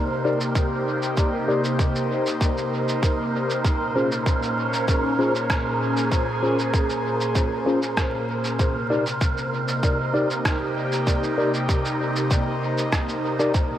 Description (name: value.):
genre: ambient dub.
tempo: 97 BPM.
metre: 4/4.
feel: straight.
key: unclear.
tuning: A4 = 440 Hz.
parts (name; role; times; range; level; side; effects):
airy breathy pad; sustained chords; 0.0-13.8 s; Bb2 to C5; -24 LUFS; equal; chorus, phaser.
wind-like tuned noise texture; texture; 0.0-13.8 s; Bb4; -29 LUFS; right 3 dB; built-in reverb.
mellow tine electric piano; stabs; 0.2-13.5 s; Db4 to D5; -27 LUFS; left 2 dB; fast stereo tremolo, low-pass filter, dub echo.
electronic shaker and rim click; drums; 0.4-13.7 s; none; -31 LUFS; right 1 dB; dub echo.
electronic kick drum; drums; 0.6-13.7 s; none; -23 LUFS; equal; none.
room: light reverb, digital ambience.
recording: vinyl crackle.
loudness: -20 LUFS.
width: side -11 dB against mid.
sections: 0.0-13.8 A section.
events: none.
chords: 0.0 Cm7; 3.6 Bbm7; 8.6 Cm7.